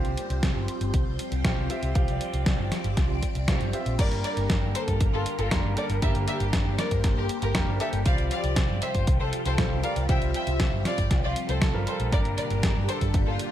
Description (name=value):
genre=italo disco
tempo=118 BPM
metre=4/4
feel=straight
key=G minor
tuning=A4 = 440 Hz
part: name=phased string machine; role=sustained chords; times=0.0-13.5 s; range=Bb2 to D5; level=-33 LUFS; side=equal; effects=ensemble chorus, phaser
part: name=warm concert grand piano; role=stabs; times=0.0-13.5 s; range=G3 to F5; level=-35 LUFS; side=right 1 dB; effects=low-pass filter, tape echo
part: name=picked electric bass with an envelope filter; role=bass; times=0.0-13.4 s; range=F1 to G2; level=-28 LUFS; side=equal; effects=none
part: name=detuned 8-bit digital drum machine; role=drums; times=0.0-13.5 s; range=crash cymbal, hi-hat, snare drum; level=-30 LUFS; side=equal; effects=gated reverb
part: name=electronic kick drum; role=drums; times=0.4-13.2 s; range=none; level=-26 LUFS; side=equal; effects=none
part: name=warm chamber violin section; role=melody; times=4.0-13.5 s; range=F4 to G5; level=-31 LUFS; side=left 1 dB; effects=tape echo
room=light reverb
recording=none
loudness=-23 LUFS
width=side -11 dB against mid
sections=0.0-4.0 A section; 4.0-13.5 B section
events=filter sweep on grand piano 0.0-4.0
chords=0.0 Csus4; 4.0 Gm; 8.1 Csus4; 12.1 Gm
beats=0.43 0.94 1.45 | 1.96 2.46 2.97 3.48 | 3.99 4.50 5.01 5.51 | 6.02 6.53 7.04 7.55 | 8.06 8.56 9.07 9.58 | 10.09 10.60 11.11 11.62 | 12.12 12.63 13.14